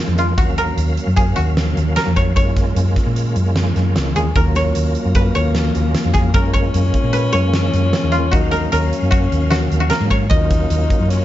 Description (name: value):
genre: progressive instrumental, band music in an uneven meter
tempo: 151 BPM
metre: 5/4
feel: straight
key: Eb minor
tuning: A4 = 439 Hz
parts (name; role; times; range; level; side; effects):
- koto; melody; 0.0-11.2 s; F4 to Eb5; -22 LUFS; equal; none
- overdriven tonewheel organ; accompaniment; 0.0-11.2 s; Gb3 to F5; -24 LUFS; right 2 dB; chorus vibrato, fast rotary speaker
- hollow-body short-scale fingered electric bass; bass; 0.1-11.2 s; Db2 to Bb2; -18 LUFS; equal; none
- huge arena drum kit; drums; 0.2-11.2 s; hi-hat, kick drum, snare drum; -20 LUFS; equal; none
- breathy alto saxophone; second line; 4.4-11.2 s; Bb3 to Eb4; -23 LUFS; left 5 dB; tape echo
room: light reverb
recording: dark, warm production, nothing above 7.6 kHz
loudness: -14 LUFS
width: side -13 dB against mid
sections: 0.0-11.2 A section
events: none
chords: 0.4 Ebm9; 2.4 Gbmaj7; 4.4 Ebm9; 6.3 Gbmaj7; 8.3 Ebm9; 10.3 Ebm7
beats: | 0.38 0.78 1.18 1.57 1.97 | 2.37 2.77 3.17 3.56 3.96 | 4.36 4.75 5.15 5.55 5.95 | 6.34 6.74 7.14 7.53 7.93 | 8.33 8.72 9.12 9.52 9.91 | 10.31 10.71 11.10